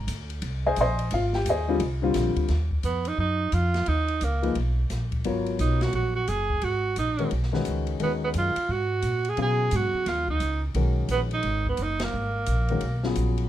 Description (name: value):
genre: modal jazz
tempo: 174 BPM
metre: 4/4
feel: swing 64% on 8ths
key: G# dorian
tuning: A4 = 440 Hz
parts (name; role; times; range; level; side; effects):
- warm baby grand piano; accompaniment; 0.0-13.5 s; C#3 to C6; -27 LUFS; left 4 dB; none
- upright bass; bass; 0.0-13.5 s; F#1 to B2; -26 LUFS; equal; none
- open jazz drum kit; drums; 0.1-13.4 s; hi-hat, kick drum, ride cymbal, snare drum; -36 LUFS; left 2 dB; none
- clear tenor saxophone; melody; 2.9-13.1 s; A#3 to G#4; -27 LUFS; right 4 dB; none
room: light reverb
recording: dark, warm production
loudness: -23 LUFS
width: side -12 dB against mid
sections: 0.0-2.5 A section; 2.5-13.5 B section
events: band accent 12.0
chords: 0.0 Ab; 2.5 G#m9